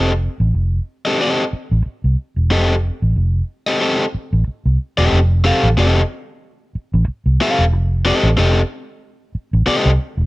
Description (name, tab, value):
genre	funk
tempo	92 BPM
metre	4/4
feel	swing 56% on 16ths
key	F mixolydian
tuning	A4 = 440 Hz
part	overdriven electric guitar	accompaniment	0.0-9.9 s	C4 to F5	-17 LUFS	left 1 dB	plate reverb
part	vintage muted fingered electric bass	bass	0.0-10.3 s	E1 to C2	-15 LUFS	equal	none
room	light reverb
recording	none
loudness	-15 LUFS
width	side -20 dB against mid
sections	0.0-5.1 A section; 5.1-10.3 B section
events	none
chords	0.0 F9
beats	0.54 1.20 1.85 | 2.51 3.16 3.82 4.47 | 5.12 5.78 6.43 7.08 | 7.72 8.38 9.02 9.67